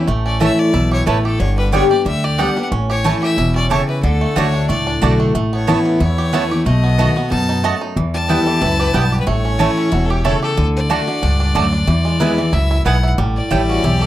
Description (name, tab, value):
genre	bluegrass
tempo	184 BPM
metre	4/4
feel	swing 54% on 8ths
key	unclear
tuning	A4 = 440 Hz
part	bluegrass banjo	melody	0.0-14.1 s	D3 to G4	-24 LUFS	right 4 dB	none
part	picked steel-string acoustic guitar	accompaniment	0.0-14.1 s	E2 to G4	-18 LUFS	left 2 dB	none
part	upright bass	bass	0.1-14.1 s	E1 to F#2	-18 LUFS	equal	none
part	clear fiddle	melody	0.3-14.1 s	A4 to A5	-23 LUFS	left 3 dB	none
part	mandolin	stabs	0.4-13.6 s	A3 to A5	-19 LUFS	right 8 dB	none
part	clear fiddle	second line	8.4-10.6, 13.7-14.1 s	E4 to B4	-24 LUFS	left 4 dB	none
room	light reverb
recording	dry, close 1970s-style studio recording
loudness	-14 LUFS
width	side -13 dB against mid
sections	0.0-14.1 A section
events	none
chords	0.0 A; 1.4 G; 2.7 A; 4.0 D; 5.3 Aadd9; 6.7 B7; 8.0 Em; 9.3 A; 10.6 D; 11.9 E; 13.2 A7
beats	| 0.08 0.41 0.74 1.07 | 1.40 1.73 2.06 2.39 | 2.72 3.05 3.38 3.71 | 4.04 4.37 4.69 5.02 | 5.35 5.68 6.00 6.33 | 6.66 6.99 7.31 7.64 | 7.96 8.29 8.62 8.94 | 9.27 9.60 9.92 10.25 | 10.57 10.90 11.23 11.55 | 11.88 12.21 12.53 12.86 | 13.19 13.51 13.84